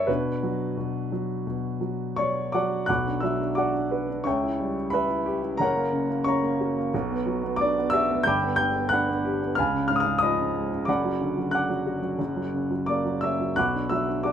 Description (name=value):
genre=classical, lyrical solo piano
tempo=89 BPM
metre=4/4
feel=rubato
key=B harmonic minor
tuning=A4 = 441 Hz
part: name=warm grand piano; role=solo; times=0.0-14.3 s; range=F#1 to G6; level=-23 LUFS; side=equal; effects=none
room=light reverb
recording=minimal, uncompressed stereo recording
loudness=-23 LUFS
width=side -9 dB against mid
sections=0.0-2.9 A section; 2.9-14.3 B section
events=grand piano fill 1.8-2.9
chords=0.1 Bm; 4.3 C#dim; 5.6 F#; 6.9 Bm; 8.3 G; 9.6 C#7; 10.9 Bm/F#; 12.2 F#; 13.6 Bm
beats=| 0.09 0.78 1.47 2.19 | 2.89 3.58 4.26 4.93 | 5.61 6.27 6.94 7.60 | 8.26 8.92 9.57 10.23 | 10.88 11.53 12.19 12.88 | 13.57 14.24